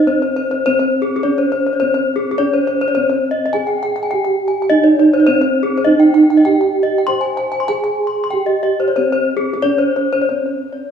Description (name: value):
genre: gamelan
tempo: 88-104 BPM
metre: 4/4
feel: straight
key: C pelog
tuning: A4 = 444 Hz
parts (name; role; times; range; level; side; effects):
- gamelan-type bronze metallophone; melody; 0.0-10.9 s; C4 to C5; -15 LUFS; right 3 dB; none
- gamelan-type bronze metallophone; arpeggios; 0.0-10.8 s; Ab4-20c to C6; -17 LUFS; left 4 dB; none
room: wet scoring stage reverb, RT60 1.9 s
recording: small room ambience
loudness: -13 LUFS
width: side -7 dB against mid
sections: 0.7-10.3 A section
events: none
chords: none